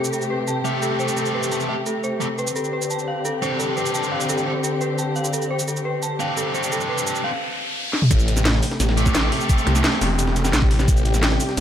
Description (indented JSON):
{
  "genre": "dark technical drum and bass",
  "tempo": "173 BPM",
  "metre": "4/4",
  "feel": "straight",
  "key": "A minor",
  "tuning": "A4 = 440 Hz",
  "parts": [
    { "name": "dark studio string section", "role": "sustained chords", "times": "0.0-11.6 s", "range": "C3 to G4", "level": "-25 LUFS", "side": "left 2 dB", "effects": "sidechain pumping" },
    { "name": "drum and bass drum kit", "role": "drums", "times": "0.0-11.6 s", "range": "hi-hat, shaker, snare drum, toms", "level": "-24 LUFS", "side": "equal", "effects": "none" },
    { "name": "dark detuned synth bell", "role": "arpeggios", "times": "0.1-7.4 s", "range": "A4 to A5", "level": "-27 LUFS", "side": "right 1 dB", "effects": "chorus, sidechain pumping, tape echo" },
    { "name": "sludgy distorted guitar", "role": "stabs", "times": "0.6-10.1 s", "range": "A3 to G4", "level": "-26 LUFS", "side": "right 1 dB", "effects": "overdrive, tape echo" },
    { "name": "riser", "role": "sound effects", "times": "6.9-8.1 s", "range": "none", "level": "-31 LUFS", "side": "left 1 dB", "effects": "none" },
    { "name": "snarling distorted saw bass", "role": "bass", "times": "8.1-11.6 s", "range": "E1 to C2", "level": "-20 LUFS", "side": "equal", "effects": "distortion" },
    { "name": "breakbeat sampler-style drum kit", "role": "drums", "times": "8.1-11.6 s", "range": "hi-hat, snare drum", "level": "-32 LUFS", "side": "right 1 dB", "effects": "none" },
    { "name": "electronic kick drum", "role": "drums", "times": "8.1-10.9 s", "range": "none", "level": "-18 LUFS", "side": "equal", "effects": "none" }
  ],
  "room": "light reverb",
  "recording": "none",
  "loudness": "-19 LUFS",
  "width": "side -10 dB against mid",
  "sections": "0.0-8.1 A section; 8.1-11.6 B section",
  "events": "filter sweep on drum 0.0-8.1; riser 6.9-8.1; drum fill 7.9; drop 8.1-11.6",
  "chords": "0.0 Am7; 2.6 Gsus4; 8.1 Am7"
}